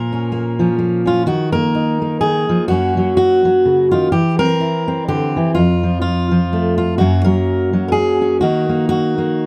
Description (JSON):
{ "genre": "folk, solo fingerstyle acoustic guitar", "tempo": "126 BPM", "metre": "3/4", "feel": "swing 57% on 8ths", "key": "unclear", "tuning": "A4 = 442 Hz", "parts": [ { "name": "fingerpicked steel-string acoustic guitar", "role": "solo", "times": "0.0-9.5 s", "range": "F2 to Bb4", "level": "-16 LUFS", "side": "equal", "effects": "none" } ], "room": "light reverb", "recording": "none", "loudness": "-16 LUFS", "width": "mono", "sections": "0.0-1.3 A section; 1.3-9.5 B section", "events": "none", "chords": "0.0 Bbm; 1.3 Ebsus2; 2.7 Gb; 4.1 C7/E; 5.6 F; 7.0 Gb; 8.4 Ebm" }